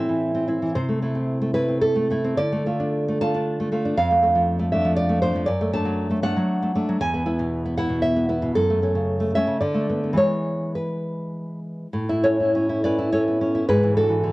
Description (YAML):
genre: romantic piece for solo classical guitar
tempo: 100-120 BPM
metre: 3/4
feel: rubato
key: A major from 5.5 s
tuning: A4 = 440 Hz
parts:
  - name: nylon-string guitar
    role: solo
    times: 0.0-14.3 s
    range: E2 to A5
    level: -20 LUFS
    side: equal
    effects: none
room: light reverb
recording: home recording on cassette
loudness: -20 LUFS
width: side -19 dB against mid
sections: 0.0-11.9 A section; 11.9-14.3 B section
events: none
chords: 0.0 Am; 0.8 Am/C; 2.4 Dm; 4.0 Dm/F; 5.5 D/F#; 7.0 E; 8.5 F#m; 9.6 Bm7/D; 10.2 E; 11.9 A; 13.7 E7/G#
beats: 0.23 | 0.76 1.28 1.82 | 2.39 2.94 3.48 | 3.98 4.49 4.99 | 5.49 5.99 6.49 | 7.01 7.52 8.03 | 8.54 9.07 9.61 | 10.18 10.77 11.34 | 11.92 12.51 13.09 | 13.65 14.21